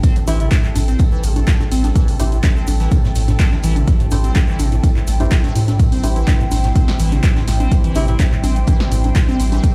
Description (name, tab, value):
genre	acid house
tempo	125 BPM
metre	4/4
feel	straight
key	unclear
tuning	A4 = 436 Hz
part	lush unison pad	sustained chords	0.0-9.7 s	G3 to C5	-31 LUFS	equal	chorus, sidechain pumping
part	liquid acid bass	riff	0.0-9.7 s	G2 to C4	-26 LUFS	equal	phaser, tube saturation, analog chorus, sidechain pumping, delay
part	electronic kick drum	drums	0.0-9.7 s	none	-16 LUFS	equal	overdrive
part	punchy analog drum machine	drums	0.0-9.7 s	congas, handclaps, hi-hat, snare drum	-28 LUFS	equal	overdrive
part	soft brush drum kit	drums	0.0-9.7 s	hi-hat, snare drum, tambourine	-40 LUFS	equal	none
part	cabasa	percussion	0.0-9.7 s	none	-42 LUFS	equal	none
part	warbly tape-like pad	texture	0.0-9.7 s	G5	-34 LUFS	equal	chorus, built-in reverb, sidechain pumping
part	clear alto saxophone	melody	0.3-0.5, 8.0-8.2 s	E4	-30 LUFS	equal	delay
part	percussive organ stab	stabs	0.3-8.1 s	A3 to C5	-32 LUFS	equal	lush chorus, delay
part	saturated sub bass	bass	0.3-9.6 s	A1 to A2	-19 LUFS	equal	sidechain pumping
room	studio ambience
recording	played on a big sound system in a bare room, stone room reverb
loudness	-16 LUFS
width	mono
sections	0.0-9.7 A section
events	none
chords	0.0 Am7